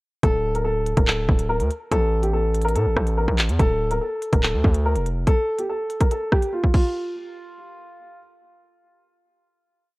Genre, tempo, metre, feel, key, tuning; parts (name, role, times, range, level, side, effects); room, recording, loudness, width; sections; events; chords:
hip hop, drill; 143 BPM; 4/4; half-time; D minor; A4 = 440 Hz
dark grand piano; melody; 0.2-8.2 s; F4 to Bb4; -24 LUFS; equal; tape echo
distorted 808-style bass; bass; 0.2-5.3 s; D1 to A2; -22 LUFS; equal; distortion
drill drum kit; drums; 0.2-6.8 s; crash cymbal, handclaps, hi-hat, kick drum, rim click; -20 LUFS; equal
little or no reverb; worn, warbling old tape, cassette tape, warbly pitch drift; -19 LUFS; side -22 dB against mid
0.2-6.9 hook; 6.9-10.0 final hit
0.2 D5; 1.9 A5; 3.6 Dm; 5.3 N.C.